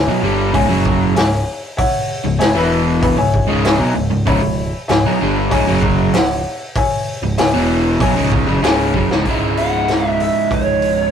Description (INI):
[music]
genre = classic rock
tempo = 96 BPM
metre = 4/4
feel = straight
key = C# minor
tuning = A4 = 440 Hz
[part]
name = clear upright piano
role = accompaniment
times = 0.0-9.1 s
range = B4 to B5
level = -20 LUFS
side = left 4 dB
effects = none
[part]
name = crunchy overdriven guitar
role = riff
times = 0.0-11.1 s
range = C#2 to E4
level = -16 LUFS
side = right 1 dB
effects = none
[part]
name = growling picked electric bass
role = bass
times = 0.0-11.1 s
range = C#1 to B1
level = -22 LUFS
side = equal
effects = overdrive
[part]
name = raw garage drum kit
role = drums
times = 0.5-11.0 s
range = hi-hat, kick drum, snare drum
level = -20 LUFS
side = equal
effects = none
[part]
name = smooth overdriven lead guitar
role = melody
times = 9.6-11.1 s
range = C#5 to F#5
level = -17 LUFS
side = right 2 dB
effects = none
[sound]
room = wet booth ambience, RT60 0.3 s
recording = rough rehearsal-room recording, warm saturation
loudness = -13 LUFS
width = side -8 dB against mid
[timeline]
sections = 0.0-9.3 A section; 9.3-11.1 B section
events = drum fill 8.9-9.3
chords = 0.0 C#m; 2.6 E5; 3.2 C#m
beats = 0.54 1.16 | 1.78 2.40 3.02 3.65 | 4.27 4.89 5.51 6.14 | 6.76 7.38 8.01 8.63 | 9.26 9.88 10.51